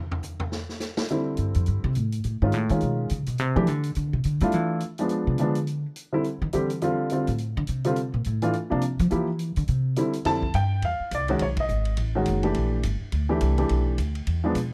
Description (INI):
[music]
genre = jazz piano trio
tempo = 210 BPM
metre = 4/4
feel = swing 60% on 8ths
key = F major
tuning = A4 = 440 Hz
[part]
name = vintage drum kit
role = drums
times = 0.1-14.6 s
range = hi-hat, kick drum, ride cymbal, snare drum, toms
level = -38 LUFS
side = equal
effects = none
[part]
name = warm baby grand piano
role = melody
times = 1.1-14.6 s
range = C3 to A5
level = -28 LUFS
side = equal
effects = none
[part]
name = upright bass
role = bass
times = 1.4-14.7 s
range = F#1 to G3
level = -27 LUFS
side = equal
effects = none
[sound]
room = little or no reverb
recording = close, detailed microphones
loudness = -26 LUFS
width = mono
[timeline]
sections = 0.0-1.1 A section; 1.1-10.3 A section; 10.3-14.7 B section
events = drum solo 0.0-1.1; upright bass solo 1.1-10.3; band accent 11.5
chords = 0.0 N.C.; 1.1 Fmaj9; 2.2 B13; 3.4 Csus2; 4.5 Bm7b5 (rootless); 5.1 Bdim7; 5.7 D9sus4; 6.8 G9sus4; 7.4 Csus2; 8.0 Fmaj7 (rootless); 10.3 Fmaj9; 11.4 B13; 12.5 Bbmaj13; 13.7 G69/B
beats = 0.24 0.52 0.81 | 1.10 1.38 1.67 1.95 | 2.24 2.53 2.81 3.10 | 3.38 3.67 3.96 4.24 | 4.53 4.82 5.10 5.39 | 5.67 5.96 6.25 6.53 | 6.82 7.11 7.39 7.68 | 7.97 8.25 8.54 8.82 | 9.11 9.40 9.68 9.97 | 10.26 10.54 10.83 11.12 | 11.40 11.69 11.98 12.26 | 12.55 12.84 13.12 13.41 | 13.70 13.98 14.27 14.55